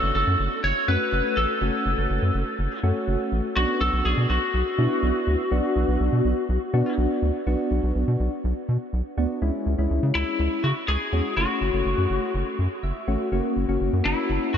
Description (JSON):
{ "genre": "synth-pop", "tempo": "123 BPM", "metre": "4/4", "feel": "straight", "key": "F# minor", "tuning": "A4 = 439 Hz", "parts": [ { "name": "lightly driven lead guitar", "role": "melody", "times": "0.0-6.9, 10.2-14.6 s", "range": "E4 to C#5", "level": "-26 LUFS", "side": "left 2 dB", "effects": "tape echo" }, { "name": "soft electric-piano-like synth keys", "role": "accompaniment", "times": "0.0-14.5 s", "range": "G#3 to E5", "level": "-27 LUFS", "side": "equal", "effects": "chorus, phaser" }, { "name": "rubbery square bass", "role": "bass", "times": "0.0-14.6 s", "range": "F#1 to C#3", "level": "-24 LUFS", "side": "equal", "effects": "none" } ], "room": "moderate huge ambient reverb, RT60 8.1 s", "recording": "dreamy mix soaked in reverb, nothing above 8.0 kHz", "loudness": "-21 LUFS", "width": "side -8 dB against mid", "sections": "0.0-7.5 A section; 7.5-9.4 B section; 9.4-14.6 C section", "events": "synth keys fill 12.6-13.3", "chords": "0.0 F#m; 3.6 Bm; 9.4 C#m; 11.4 F#m7; 13.3 F#7" }